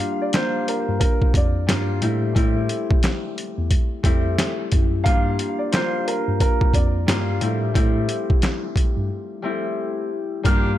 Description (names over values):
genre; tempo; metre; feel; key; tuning
hip hop, boom-bap hip-hop; 89 BPM; 4/4; swing 62% on 16ths; unclear; A4 = 440 Hz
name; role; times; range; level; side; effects
dark upright piano; melody; 0.0-10.8 s; Bb4 to F6; -27 LUFS; right 2 dB; high-pass filter, low-pass filter, tape echo
concert harp; accompaniment; 0.0-10.8 s; G3 to F4; -25 LUFS; left 3 dB; cassette tape, high-pass filter, low-pass filter
boom bap sampler-style drum kit; drums; 0.0-10.6 s; hi-hat, kick drum, snare drum; -20 LUFS; equal; none
mellow tine electric piano; bass; 0.9-10.8 s; E2 to A2; -23 LUFS; equal; medium stereo tremolo
warm saxophone section; stabs; 10.4-10.7 s; Bb3 to G4; -29 LUFS; right 3 dB; high-pass filter, low-pass filter
room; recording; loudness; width
light reverb, small room ambience; none; -19 LUFS; side -13 dB against mid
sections
0.0-10.5 A section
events
break 9.1-10.5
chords
0.0 Gm7; 2.0 Am7; 5.1 Gm7; 7.4 Am7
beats
0.34 1.01 1.69 | 2.36 3.04 3.71 4.38 | 5.06 5.73 6.41 7.08 | 7.75 8.43 9.10 9.78 | 10.45